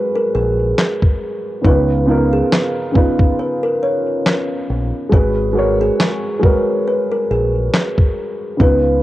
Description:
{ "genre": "lo-fi hip hop", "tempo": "69 BPM", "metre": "4/4", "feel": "swing 56% on 16ths", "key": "G# dorian", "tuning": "A4 = 441 Hz", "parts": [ { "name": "kalimba", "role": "melody", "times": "0.0-9.0 s", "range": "G#4 to C#5", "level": "-20 LUFS", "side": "equal", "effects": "low-pass filter, cassette tape, tape echo" }, { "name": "dark upright piano", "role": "accompaniment", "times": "0.0-9.0 s", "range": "C#3 to C#5", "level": "-18 LUFS", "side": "equal", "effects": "low-pass filter, cassette tape" }, { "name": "deep dub fingered electric bass", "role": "bass", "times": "0.3-9.0 s", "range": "G#1 to C#2", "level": "-19 LUFS", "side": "equal", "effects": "none" }, { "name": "dusty soul sampler-style drum kit", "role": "drums", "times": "0.8-8.8 s", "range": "handclaps, kick drum, snare drum", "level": "-14 LUFS", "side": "equal", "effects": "cassette tape" } ], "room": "light reverb", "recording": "home recording on cassette", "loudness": "-14 LUFS", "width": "side -16 dB against mid", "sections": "0.0-9.0 A section", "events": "break 0.0-9.0", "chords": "0.0 G#m9; 1.6 C#13; 5.1 G#m9", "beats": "0.77 | 1.64 2.51 3.38 4.25 | 5.12 5.99 6.86 7.73 | 8.60" }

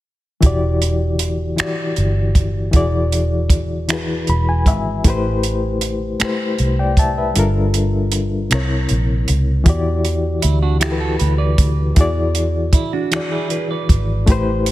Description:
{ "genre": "slow six-eight R&B", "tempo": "52 BPM (dotted quarters)", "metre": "6/8", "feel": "straight", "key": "E minor", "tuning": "A4 = 436 Hz", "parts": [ { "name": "bright reed electric piano", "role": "accompaniment", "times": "0.4-14.7 s", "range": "C3 to B5", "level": "-20 LUFS", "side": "left 2 dB", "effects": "fast tremolo" }, { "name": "vintage muted fingered electric bass", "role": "bass", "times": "0.4-14.7 s", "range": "E1 to E2", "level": "-18 LUFS", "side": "equal", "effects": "none" }, { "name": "compact cocktail drum kit", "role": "drums", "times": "0.4-14.7 s", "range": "finger snaps, hi-hat, kick drum", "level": "-17 LUFS", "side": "right 1 dB", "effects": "soft clipping on snare" }, { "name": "semi-hollow electric guitar", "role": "second line", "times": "10.4-14.3 s", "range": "D4 to D5", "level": "-25 LUFS", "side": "right 9 dB", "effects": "none" } ], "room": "light reverb, small room ambience", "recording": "dense, heavily limited modern master", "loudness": "-15 LUFS", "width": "side -15 dB against mid", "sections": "0.4-9.7 A section; 9.7-14.7 B section", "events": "reed electric piano fill 3.9-5.0; kick muted 7.4-9.7", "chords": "0.4 Em7; 2.7 E7; 5.0 Am9; 7.4 Gm7; 8.5 C7b9; 9.7 Em7; 12.0 E7", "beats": "| 0.43 1.58 | 2.74 3.89 | 5.05 6.20 | 7.35 8.51 | 9.66 10.81 | 11.97 13.12 | 14.28" }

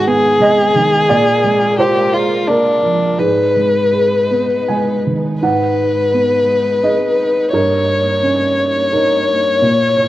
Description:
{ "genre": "neoclassical piano and strings", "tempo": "86 BPM", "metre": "3/4", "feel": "rubato", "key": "G# minor", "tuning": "A4 = 440 Hz", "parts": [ { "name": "warm violin", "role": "melody", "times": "0.0-10.1 s", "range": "D4 to C#5", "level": "-14 LUFS", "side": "left 2 dB", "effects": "none" }, { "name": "dark upright piano", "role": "accompaniment", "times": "0.0-10.1 s", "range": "G2 to G#5", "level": "-16 LUFS", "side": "right 2 dB", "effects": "cassette tape" }, { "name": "rich symphonic string section", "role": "sustained chords", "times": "0.0-10.1 s", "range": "G#3 to C#5", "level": "-27 LUFS", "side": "equal", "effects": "cassette tape" } ], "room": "moderate spring reverb, RT60 1.5 s, studio ambience", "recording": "home recording on cassette", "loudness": "-12 LUFS", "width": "side -14 dB against mid", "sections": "0.0-5.4 A section; 5.4-10.1 B section", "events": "none", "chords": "0.0 G#m; 1.1 A#7; 3.2 G#m; 7.5 D#7/G", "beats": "0.42 | 1.10 1.79 2.48 | 3.20 3.93 4.70 | 5.43 6.14 6.84 | 7.54 8.24 8.93 | 9.62" }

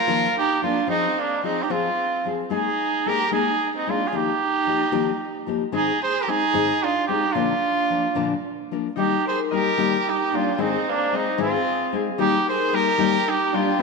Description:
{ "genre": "mexican folk, mariachi", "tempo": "74 BPM (dotted quarters)", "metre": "6/8", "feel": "straight", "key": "Eb major", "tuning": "A4 = 439 Hz", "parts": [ { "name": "clear trumpet", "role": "melody", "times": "0.0-13.8 s", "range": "D4 to C5", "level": "-23 LUFS", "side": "right 1 dB", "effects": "none" }, { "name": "rich violin", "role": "second line", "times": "0.0-13.8 s", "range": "Bb3 to Ab4", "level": "-26 LUFS", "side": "right 10 dB", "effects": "none" }, { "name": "nylon-string guitar", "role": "accompaniment", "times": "0.1-13.8 s", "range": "Ab2 to Bb4", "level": "-26 LUFS", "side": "left 9 dB", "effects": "none" }, { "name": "concert harp", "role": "arpeggios", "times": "9.0-13.8 s", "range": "Eb4 to Eb6", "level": "-28 LUFS", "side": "left 9 dB", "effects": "none" } ], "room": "wet echo chamber reverb, RT60 2.4 s", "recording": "1960s-style stereo with parts hard left and right", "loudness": "-20 LUFS", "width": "side -3 dB against mid", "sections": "0.0-13.8 A section", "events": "none", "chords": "0.0 Ebsus2; 0.9 Fm; 2.5 Absus2; 4.1 Ebadd9; 5.7 Ab; 7.3 Bb; 9.0 Eb; 10.6 Ab; 12.2 Eb", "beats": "0.08 | 0.89 1.70 | 2.51 3.32 | 4.13 4.93 | 5.73 6.53 | 7.34 8.15 | 8.96 9.77 | 10.58 11.38 | 12.18 12.98 | 13.79" }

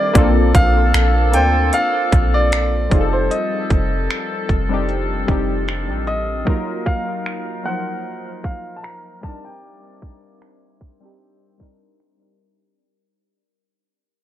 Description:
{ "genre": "contemporary R&B", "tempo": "76 BPM", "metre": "4/4", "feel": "swing 54% on 16ths", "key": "Bb major", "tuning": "A4 = 443 Hz", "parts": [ { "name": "clear baby grand piano", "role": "melody", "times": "0.0-12.0 s", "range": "C5 to Bb5", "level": "-22 LUFS", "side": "equal", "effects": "tape echo" }, { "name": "warm analog keys", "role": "accompaniment", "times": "0.0-12.8 s", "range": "F3 to C5", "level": "-22 LUFS", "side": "left 2 dB", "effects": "chorus, tape echo" }, { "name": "clear woodwind section", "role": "sustained chords", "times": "0.0-12.8 s", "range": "C3 to D5", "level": "-27 LUFS", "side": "right 1 dB", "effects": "none" }, { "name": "soft 808-style bass", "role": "bass", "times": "0.2-6.4 s", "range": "F1 to D2", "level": "-18 LUFS", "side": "equal", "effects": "none" }, { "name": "trap drum kit", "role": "drums", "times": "0.2-12.2 s", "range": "finger snaps, hi-hat, kick drum", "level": "-18 LUFS", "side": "equal", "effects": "overdrive" } ], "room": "digital ambience", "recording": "echo-heavy mix, low-pass filter", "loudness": "-16 LUFS", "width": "side -12 dB against mid", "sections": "0.2-12.8 A section", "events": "fade-out 0.2-12.8; filter sweep 0.2-12.8", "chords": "0.2 Bbmaj9; 2.9 F13; 6.5 Ebmadd9; 9.2 Cm9", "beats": "| 0.15 0.94 1.73 2.52 | 3.31 4.10 4.89 5.68 | 6.47 7.26 8.05 8.84 | 9.62 10.41 11.20 11.99" }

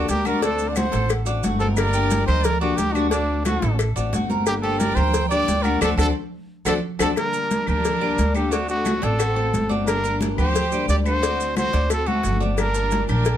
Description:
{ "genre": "latin, Cuban son and guajira", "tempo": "178 BPM", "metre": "4/4", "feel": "straight", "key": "G harmonic minor", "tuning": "A4 = 439 Hz", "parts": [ { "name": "breathy trumpet", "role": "melody", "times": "0.0-13.4 s", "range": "D4 to D5", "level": "-24 LUFS", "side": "right 1 dB", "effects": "none" }, { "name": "bright symphonic violin section", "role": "second line", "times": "0.0-13.4 s", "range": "A3 to G5", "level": "-32 LUFS", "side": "right 2 dB", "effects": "none" }, { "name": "picked steel-string acoustic guitar", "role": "accompaniment", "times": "0.0-13.3 s", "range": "D3 to G4", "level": "-29 LUFS", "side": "left 6 dB", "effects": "none" }, { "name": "Cuban tres", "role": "arpeggios", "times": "0.0-13.4 s", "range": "D4 to D5", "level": "-29 LUFS", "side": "right 1 dB", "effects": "none" }, { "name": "upright bass", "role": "bass", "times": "0.0-13.4 s", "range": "G1 to D2", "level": "-24 LUFS", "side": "right 1 dB", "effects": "none" }, { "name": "congas", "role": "percussion", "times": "0.1-13.4 s", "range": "none", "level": "-27 LUFS", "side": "equal", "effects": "none" }, { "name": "cowbell", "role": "percussion", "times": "0.1-13.4 s", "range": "none", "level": "-28 LUFS", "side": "left 5 dB", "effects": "none" }, { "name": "maracas", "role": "percussion", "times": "0.1-13.4 s", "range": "none", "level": "-36 LUFS", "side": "right 8 dB", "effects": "none" }, { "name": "claves", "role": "percussion", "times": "0.3-13.3 s", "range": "none", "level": "-34 LUFS", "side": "left 8 dB", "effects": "none" } ], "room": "light reverb", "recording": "close, detailed microphones", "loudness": "-19 LUFS", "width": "side -10 dB against mid", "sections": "0.0-7.2 A section; 7.2-13.4 B section", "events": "band accent 5.8-7.2; drum fill 6.2-7.2, 12.1-12.6", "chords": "0.4 D7; 1.8 Gm; 3.1 D7; 4.5 Gm; 5.8 D7; 7.2 Gm; 8.5 D7; 9.9 Gm; 11.2 D7; 12.6 Gm", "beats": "0.09 | 0.42 0.76 1.10 1.44 | 1.77 2.11 2.45 2.78 | 3.12 3.46 3.79 4.13 | 4.47 4.80 5.14 5.48 | 5.82 6.16 6.49 6.83 | 7.17 7.51 7.84 8.18 | 8.52 8.86 9.20 9.54 | 9.87 10.21 10.55 10.89 | 11.23 11.57 11.90 12.24 | 12.58 12.92 13.26" }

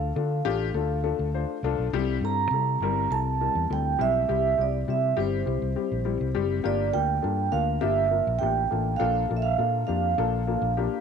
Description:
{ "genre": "uptempo 1960s-style soul", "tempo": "102 BPM", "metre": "4/4", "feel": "straight", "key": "unclear", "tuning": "A4 = 441 Hz", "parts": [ { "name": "vibraphone with soft mallets", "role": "melody", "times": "0.0-11.0 s", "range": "C5 to Bb5", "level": "-27 LUFS", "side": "right 9 dB", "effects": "none" }, { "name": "dark upright piano", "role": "accompaniment", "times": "0.0-11.0 s", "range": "G3 to C5", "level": "-28 LUFS", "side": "left 12 dB", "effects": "none" }, { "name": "fingered electric bass", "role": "bass", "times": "0.0-10.9 s", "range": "F#1 to D3", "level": "-28 LUFS", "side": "equal", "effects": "none" } ], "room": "moderate plate reverb, RT60 2.5 s", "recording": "1960s-style stereo with parts hard left and right", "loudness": "-23 LUFS", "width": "side -6 dB against mid", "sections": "0.0-6.6 A section; 6.6-11.0 B section", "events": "none", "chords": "0.0 Dm; 1.9 C; 6.6 Gm7; 9.0 Bbmaj7", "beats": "0.16 0.75 1.34 | 1.93 2.52 3.11 3.70 | 4.29 4.88 5.47 6.06 | 6.65 7.24 7.83 8.41 | 9.00 9.59 10.18 10.77" }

